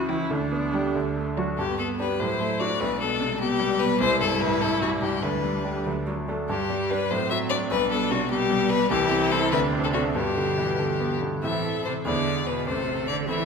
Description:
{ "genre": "quick classical-period movement for piano quartet", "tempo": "97 BPM (dotted quarters)", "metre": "6/8", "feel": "rubato", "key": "G major", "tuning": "A4 = 436 Hz", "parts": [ { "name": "bright grand piano", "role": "accompaniment", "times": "0.0-13.4 s", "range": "A1 to D5", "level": "-27 LUFS", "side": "right 1 dB", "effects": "none" }, { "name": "clear viola", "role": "accompaniment", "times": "0.0-13.4 s", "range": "B3 to A4", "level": "-31 LUFS", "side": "right 2 dB", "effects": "none" }, { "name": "clear violin", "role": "melody", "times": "0.1-13.4 s", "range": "F#4 to B5", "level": "-26 LUFS", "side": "left 7 dB", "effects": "none" }, { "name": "bright cello", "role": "second line", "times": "0.1-13.4 s", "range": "B2 to B3", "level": "-31 LUFS", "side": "right 5 dB", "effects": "none" } ], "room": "wet scoring stage reverb, RT60 1.8 s", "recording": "minimal, uncompressed stereo recording", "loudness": "-22 LUFS", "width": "side -5 dB against mid", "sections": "0.0-1.6 A section; 1.6-11.4 B section; 11.4-13.4 C section", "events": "none", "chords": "0.3 G/D; 0.9 D; 1.6 G; 2.2 D7/A; 2.8 G/B; 4.0 C; 5.2 G/D; 5.9 D; 6.5 G; 7.1 D7/A; 7.7 G/B; 8.9 C; 9.5 D5; 10.2 G; 11.4 Am; 12.1 E7; 12.7 Am" }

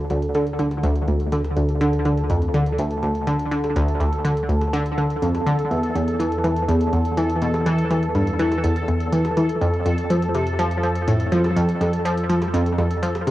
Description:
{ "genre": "ambient, sequencer-driven space music", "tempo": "123 BPM", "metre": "4/4", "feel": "straight", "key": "D minor", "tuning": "A4 = 438 Hz", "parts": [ { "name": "analog pluck", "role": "riff", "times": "0.0-13.3 s", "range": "D2 to F3", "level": "-20 LUFS", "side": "equal", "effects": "chorus, cassette tape, analog delay" }, { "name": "fat analog bass", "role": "bass", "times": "0.0-13.3 s", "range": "D2 to F2", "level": "-27 LUFS", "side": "equal", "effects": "none" }, { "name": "bubbling stepped-filter texture", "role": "texture", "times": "0.0-13.3 s", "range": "A4", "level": "-28 LUFS", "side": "equal", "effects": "chorus, built-in reverb, cassette tape, plate reverb" }, { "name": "electronic hi-hat and percussion blips", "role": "percussion", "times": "0.1-13.3 s", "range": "none", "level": "-39 LUFS", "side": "equal", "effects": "cassette tape, analog delay" } ], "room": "wet studio ambience, RT60 0.5 s", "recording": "home recording on cassette", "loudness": "-18 LUFS", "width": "side -15 dB against mid", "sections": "0.0-13.3 A section", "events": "fade-in on drum 0.0-13.3", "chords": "0.0 D5; 5.7 N.C.; 9.6 F" }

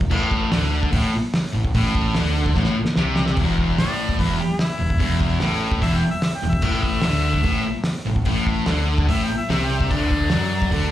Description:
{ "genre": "garage rock duo or trio", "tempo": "147 BPM", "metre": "4/4", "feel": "straight", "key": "unclear", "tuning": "A4 = 443 Hz", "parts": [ { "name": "thick fuzz guitar", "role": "riff", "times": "0.0-10.9 s", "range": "E2 to F#3", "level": "-22 LUFS", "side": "equal", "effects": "distortion, slapback echo" }, { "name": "growling picked electric bass", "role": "bass", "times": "0.0-10.9 s", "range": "E1 to F#2", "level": "-23 LUFS", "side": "equal", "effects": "overdrive, tube saturation" }, { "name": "cloth-damped thuddy drum kit", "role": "drums", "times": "0.0-10.8 s", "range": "crash cymbal, hi-hat, kick drum, snare drum", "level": "-23 LUFS", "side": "equal", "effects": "none" }, { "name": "clear harmonica", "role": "melody", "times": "3.8-10.9 s", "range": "E4 to G5", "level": "-27 LUFS", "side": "left 1 dB", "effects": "overdrive, slapback echo, analog delay" } ], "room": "studio ambience", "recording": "live gig heard through the venue's PA, club reverb", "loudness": "-18 LUFS", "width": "side -13 dB against mid", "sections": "0.0-3.4 A section; 3.4-10.9 B section", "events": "drum fill 2.6-3.4; harmonica solo 3.4-10.9", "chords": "0.1 Amadd11; 3.4 Esus4; 6.6 A5; 9.9 D" }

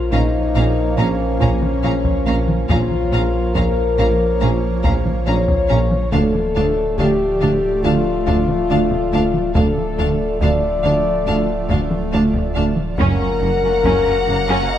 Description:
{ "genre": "cinematic, hybrid orchestral and electronic film score", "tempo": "70 BPM", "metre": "4/4", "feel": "straight", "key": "unclear", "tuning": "A4 = 439 Hz", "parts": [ { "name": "ethereal airy pad", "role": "sustained chords", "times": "0.0-14.8 s", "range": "Db3 to D5", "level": "-28 LUFS", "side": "equal", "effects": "ensemble chorus, built-in reverb, tremolo" }, { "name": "mellow French horn section", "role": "sustained chords", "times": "0.0-14.8 s", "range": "Db4 to Eb5", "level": "-20 LUFS", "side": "left 4 dB", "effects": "none" }, { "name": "warm trombone section", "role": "sustained chords", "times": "0.0-14.8 s", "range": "Db3 to Bb3", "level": "-27 LUFS", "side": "right 5 dB", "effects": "none" }, { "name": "pure sine sub bass", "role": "bass", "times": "0.0-14.8 s", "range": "D1 to Bb1", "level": "-24 LUFS", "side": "equal", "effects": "none" }, { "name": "rich symphonic violin section", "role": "melody", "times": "0.1-14.8 s", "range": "A5 to Bb5", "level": "-32 LUFS", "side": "left 4 dB", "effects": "none" }, { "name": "rich symphonic violin section", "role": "second line", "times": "0.1-14.8 s", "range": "F5 to Gb5", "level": "-29 LUFS", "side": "left 3 dB", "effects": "none" }, { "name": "warm symphonic viola section", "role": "accompaniment", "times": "0.1-14.7 s", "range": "Bb3 to D4", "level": "-28 LUFS", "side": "equal", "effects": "none" }, { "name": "dark tuba", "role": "bass", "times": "0.1-14.4 s", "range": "Gb1 to D2", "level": "-25 LUFS", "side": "right 3 dB", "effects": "none" }, { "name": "rich symphonic double bass section", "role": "bass", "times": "0.1-14.4 s", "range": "Gb1 to D2", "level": "-24 LUFS", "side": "right 2 dB", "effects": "none" }, { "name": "warm symphonic cello section", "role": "bass", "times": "0.1-14.6 s", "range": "D2 to Bb2", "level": "-24 LUFS", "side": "right 2 dB", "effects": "none" }, { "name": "taiko ensemble", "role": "drums", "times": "0.1-14.7 s", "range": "none", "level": "-23 LUFS", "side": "equal", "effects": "none" } ], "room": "moderate scoring stage reverb, RT60 2.0 s", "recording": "dark, warm production", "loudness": "-15 LUFS", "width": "side -10 dB against mid", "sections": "0.0-14.8 A section", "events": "none", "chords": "0.0 Bbm; 6.1 Dm; 13.0 Gb" }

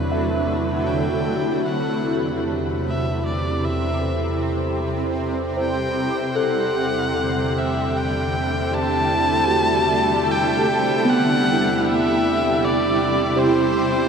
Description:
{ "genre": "ambient", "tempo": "77 BPM", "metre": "3/4", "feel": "straight", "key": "C lydian", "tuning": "A4 = 441 Hz", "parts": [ { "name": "bright electric violin", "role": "melody", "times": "0.0-14.1 s", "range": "B4 to A5", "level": "-24 LUFS", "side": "left 1 dB", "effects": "ping-pong delay" }, { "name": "shimmering ambient pad", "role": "sustained chords", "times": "0.0-14.1 s", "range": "C3 to A4", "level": "-22 LUFS", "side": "right 1 dB", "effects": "chorus, built-in reverb, phaser" }, { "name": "muted felt-like synth keys", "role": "arpeggios", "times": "0.0-14.1 s", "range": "B3 to E5", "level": "-26 LUFS", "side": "equal", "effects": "chorus, ping-pong delay" }, { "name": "round analog bass", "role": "bass", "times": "0.0-14.1 s", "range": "E2", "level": "-30 LUFS", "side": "equal", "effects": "tube saturation" }, { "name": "analog drone", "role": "drone", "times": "0.0-14.1 s", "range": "C3", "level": "-28 LUFS", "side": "right 1 dB", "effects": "chorus" }, { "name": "rich studio violin section", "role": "texture", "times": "0.0-14.1 s", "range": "G3 to B5", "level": "-32 LUFS", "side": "left 1 dB", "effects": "none" } ], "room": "wet huge ambient reverb, RT60 7.2 s", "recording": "none", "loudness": "-18 LUFS", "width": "side -6 dB against mid", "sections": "0.0-14.1 A section", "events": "fade-in on violin section 0.0-14.1; fade-in on electric violin 0.0-14.1; fade-out on analog synth bass 0.0-14.1", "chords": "0.0 Em11; 1.7 Cmaj7/E; 6.4 Em11; 11.0 Cmaj7/E" }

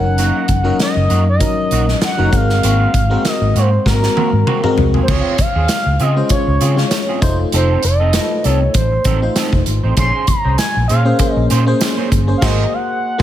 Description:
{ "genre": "polished 1980s jazz-funk pop", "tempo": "98 BPM", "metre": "4/4", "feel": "swing 54% on 16ths", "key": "unclear", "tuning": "A4 = 440 Hz", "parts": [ { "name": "expressive synth lead", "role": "melody", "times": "0.0-13.2 s", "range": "Bb4 to C6", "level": "-20 LUFS", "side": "equal", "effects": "chorus" }, { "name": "FM electric piano", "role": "accompaniment", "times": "0.0-13.2 s", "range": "Gb3 to Db5", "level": "-20 LUFS", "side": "left 3 dB", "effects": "lush chorus" }, { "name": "electric guitar at the edge of break-up", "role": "riff", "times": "0.0-13.2 s", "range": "Bb3 to C5", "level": "-24 LUFS", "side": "right 6 dB", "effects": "ensemble chorus" }, { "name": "vintage muted fingered electric bass", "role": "bass", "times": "0.0-13.2 s", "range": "F1 to Db3", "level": "-15 LUFS", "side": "equal", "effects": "none" }, { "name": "modern studio drum kit", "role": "drums", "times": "0.2-13.2 s", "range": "crash cymbal, hi-hat, kick drum, snare drum, toms", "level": "-18 LUFS", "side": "equal", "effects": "gated reverb" }, { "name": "tambourine", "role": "percussion", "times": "5.7-12.0 s", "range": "none", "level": "-31 LUFS", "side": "right 11 dB", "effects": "none" } ], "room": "studio reverb", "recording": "none", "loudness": "-12 LUFS", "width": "side -12 dB against mid", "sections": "0.0-5.1 A section; 5.1-13.2 B section", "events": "drum fill 3.9-5.1; band accent 12.4-13.2", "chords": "0.0 Gb6; 2.3 Ab9; 5.1 Dbmaj7; 7.2 F7; 10.0 Bbm9; 12.4 Ab9" }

